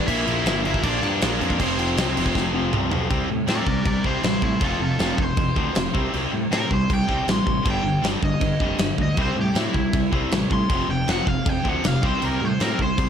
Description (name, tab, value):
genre	punk rock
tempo	158 BPM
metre	4/4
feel	straight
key	C major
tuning	A4 = 440 Hz
part	crunchy overdriven guitar	melody	0.0-13.1 s	C4 to C6	-27 LUFS	left 1 dB	none
part	distorted electric guitar	riff	0.0-13.1 s	F2 to C4	-26 LUFS	left 10 dB	overdrive
part	distorted electric guitar	riff	0.0-13.1 s	F2 to C4	-27 LUFS	right 10 dB	distortion
part	fuzz picked electric bass	bass	0.0-13.1 s	F1 to A2	-28 LUFS	equal	overdrive
part	big rock drum kit	drums	0.1-13.1 s	crash cymbal, kick drum, snare drum, toms	-24 LUFS	equal	none
room	light reverb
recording	none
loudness	-19 LUFS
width	side -8 dB against mid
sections	0.0-3.1 A section; 3.1-13.1 B section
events	drum fill 2.3-3.1; overdriven electric guitar solo 3.1-13.1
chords	0.1 Bb; 1.6 F5; 3.1 C; 4.6 F5; 6.0 C5; 7.7 G5; 9.2 C; 10.7 F5; 12.0 C5